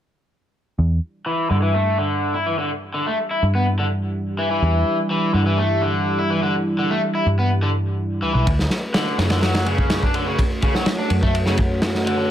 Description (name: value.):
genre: breakbeat, breaks.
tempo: 125 BPM.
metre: 4/4.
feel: straight.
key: E dorian.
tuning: A4 = 440 Hz.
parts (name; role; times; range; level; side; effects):
dark analog pad; sustained chords; 0.8-12.3 s; E4 to F#5; -26 LUFS; right 1 dB; chorus, sidechain pumping.
vintage muted picked electric bass; bass; 0.8-12.3 s; B1 to G2; -21 LUFS; equal; low-pass filter.
overdriven electric guitar; riff; 1.3-12.3 s; C#3 to E4; -22 LUFS; left 1 dB; low-pass filter, dub echo.
crunchy breakbeat drum kit; drums; 8.5-12.2 s; kick drum, ride cymbal, snare drum; -20 LUFS; equal; none.
room: moderate small room reverb, RT60 0.5 s.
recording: none.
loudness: -18 LUFS.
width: side -10 dB against mid.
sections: 0.8-12.3 A section.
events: filter sweep on picked electric bass 0.8-12.3; filter sweep on analog synth pad 0.8-12.3.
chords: 0.8 Em7; 8.5 Dmaj7.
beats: | 0.78 1.26 1.74 2.22 | 2.70 3.18 3.66 4.14 | 4.62 5.10 5.58 6.06 | 6.54 7.02 7.50 7.98 | 8.46 8.94 9.42 9.90 | 10.38 10.86 11.34 11.82 | 12.30.